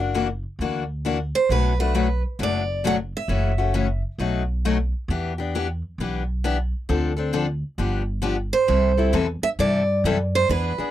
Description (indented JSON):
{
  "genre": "acoustic string swing (jazz manouche)",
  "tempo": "133 BPM",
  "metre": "4/4",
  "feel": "swing 64% on 8ths",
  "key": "unclear",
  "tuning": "A4 = 440 Hz",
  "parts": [
    { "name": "picked steel-string acoustic guitar", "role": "accompaniment", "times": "0.0-10.9 s", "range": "B2 to A4", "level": "-24 LUFS", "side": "left 5 dB", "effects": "none" },
    { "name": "upright bass", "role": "bass", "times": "0.0-10.8 s", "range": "F#1 to G2", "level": "-24 LUFS", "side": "right 1 dB", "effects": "none" },
    { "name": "picked steel-string acoustic guitar", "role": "melody", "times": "1.4-4.0, 8.5-10.9 s", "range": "B4 to F#5", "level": "-23 LUFS", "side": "right 4 dB", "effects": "none" }
  ],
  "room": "light reverb",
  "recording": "dry, close 1970s-style studio recording",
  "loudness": "-21 LUFS",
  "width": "side -12 dB against mid",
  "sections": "0.0-8.7 A section; 8.7-10.9 B section",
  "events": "none",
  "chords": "0.0 F#aug7; 1.5 Bm7; 3.3 F#m7; 4.2 B7; 5.1 Em7; 6.9 Dm7; 7.8 G7; 8.7 C6"
}